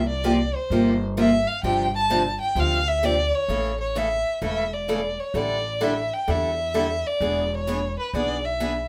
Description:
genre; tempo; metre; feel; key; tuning
acoustic string swing (jazz manouche); 129 BPM; 4/4; swing 63% on 8ths; unclear; A4 = 440 Hz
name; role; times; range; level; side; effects
warm violin; melody; 0.0-8.9 s; B4 to A5; -27 LUFS; equal; none
upright bass; bass; 0.0-8.9 s; E1 to E2; -31 LUFS; equal; none
picked steel-string acoustic guitar; accompaniment; 0.2-8.7 s; C3 to A4; -27 LUFS; equal; none
room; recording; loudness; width
wet club reverb, RT60 0.6 s; none; -23 LUFS; mono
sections
0.0-8.9 A section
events
none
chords
0.0 C7sus4; 1.6 G7sus4; 3.5 A; 5.3 A7sus4; 7.2 E7

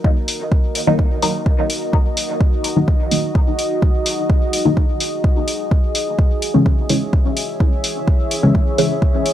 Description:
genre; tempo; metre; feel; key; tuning
dub techno; 127 BPM; 4/4; straight; Eb phrygian; A4 = 439 Hz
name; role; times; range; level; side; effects
deep dark ambient pad; sustained chords; 0.0-9.3 s; Eb4 to Fb5; -23 LUFS; equal; chorus, built-in reverb, sidechain pumping
electronic kick drum; drums; 0.0-9.1 s; none; -15 LUFS; equal; overdrive
electronic hi-hat; drums; 0.3-9.3 s; none; -22 LUFS; left 2 dB; overdrive
filtered dub chord stab; stabs; 0.9-8.9 s; Db3 to Eb4; -19 LUFS; left 1 dB; phaser, dub echo
room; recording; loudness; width
digital ambience; dry, gritty hardware recording, transformer saturation; -15 LUFS; side -11 dB against mid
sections
0.0-9.3 A section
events
filter sweep on synth stab 0.0-9.3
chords
0.0 Ebm; 6.2 Dbm

